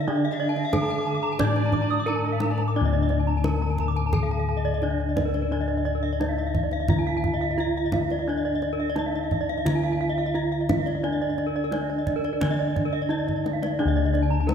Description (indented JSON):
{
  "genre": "Balinese gamelan",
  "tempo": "87 BPM",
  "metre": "4/4",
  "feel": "straight",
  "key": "D pelog",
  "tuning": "A4 = 440 Hz",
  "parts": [
    { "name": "gamelan-type bronze metallophone", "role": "melody", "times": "0.0-14.5 s", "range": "D4 to D5", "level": "-29 LUFS", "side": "right 2 dB", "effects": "none" },
    { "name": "gamelan-type bronze metallophone", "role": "accompaniment", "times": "0.0-2.8, 13.8-14.5 s", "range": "D3 to D4", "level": "-31 LUFS", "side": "right 8 dB", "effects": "none" },
    { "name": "gamelan-type bronze metallophone", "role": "arpeggios", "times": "0.0-14.5 s", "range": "Bb4-40c to D6", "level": "-31 LUFS", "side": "left 4 dB", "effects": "none" },
    { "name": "gamelan-type bossed gongs", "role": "bass", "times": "0.0-14.5 s", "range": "D2 to Eb4", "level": "-26 LUFS", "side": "left 3 dB", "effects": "none" },
    { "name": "gamelan-type bronze metallophone", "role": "arpeggios", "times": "0.2-14.4 s", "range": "Bb4-40c to Eb6", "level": "-31 LUFS", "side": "right 6 dB", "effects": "none" },
    { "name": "breathy bright alto recorder", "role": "second line", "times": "0.3-2.6 s", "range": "Bb4-44c to F5-49c", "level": "-35 LUFS", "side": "left 2 dB", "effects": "none" },
    { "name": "kendang", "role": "percussion", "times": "0.6-14.5 s", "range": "none", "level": "-30 LUFS", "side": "equal", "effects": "none" }
  ],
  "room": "moderate concert hall reverb, RT60 2.5 s",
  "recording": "none",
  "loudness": "-22 LUFS",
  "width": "side -7 dB against mid",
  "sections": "0.0-2.8 A section; 2.8-14.5 B section",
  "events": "drum fill 13.3-13.8",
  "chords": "none"
}